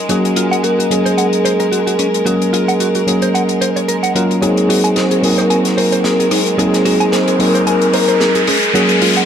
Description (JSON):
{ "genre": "nu-disco, nu disco", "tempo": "111 BPM", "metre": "4/4", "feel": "swing 55% on 16ths", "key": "Ab mixolydian", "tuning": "A4 = 443 Hz", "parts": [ { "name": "rich chamber violin section", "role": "sustained chords", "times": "0.0-9.3 s", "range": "Ab3 to Bb4", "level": "-20 LUFS", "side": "right 1 dB", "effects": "none" }, { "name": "soft octave-layered synth lead", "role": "melody", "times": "0.1-9.3 s", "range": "Gb4 to C5", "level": "-18 LUFS", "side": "left 1 dB", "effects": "chorus, ping-pong delay" }, { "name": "tine electric piano", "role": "accompaniment", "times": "0.1-9.3 s", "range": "Gb3 to Bb4", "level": "-16 LUFS", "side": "equal", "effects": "vintage 12-bit sampler grit" }, { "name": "direct-recorded clean electric guitar", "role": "riff", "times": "0.1-9.2 s", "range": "Db4 to Ab5", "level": "-21 LUFS", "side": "right 3 dB", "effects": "wide subtle chorus, low-pass filter, ping-pong delay" }, { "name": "damped 70s drum kit", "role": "drums", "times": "0.1-9.3 s", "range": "hi-hat, rim click, snare drum", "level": "-21 LUFS", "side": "left 4 dB", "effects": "high-pass filter on hats, high-pass filter on snare, high-pass filter on room" }, { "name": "riser", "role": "sound effects", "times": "6.3-9.3 s", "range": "none", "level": "-20 LUFS", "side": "left 1 dB", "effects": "none" } ], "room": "moderate digital room reverb, RT60 1.2 s", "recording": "dark, warm production", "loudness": "-11 LUFS", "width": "side -8 dB against mid", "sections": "0.0-4.4 A section; 4.4-9.3 B section", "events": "build-up 4.4-9.3; filter sweep on clean electric guitar 4.4-9.3; riser 6.3-9.3", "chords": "0.0 Gbadd9; 4.4 Ab9; 8.5 Gbmaj9" }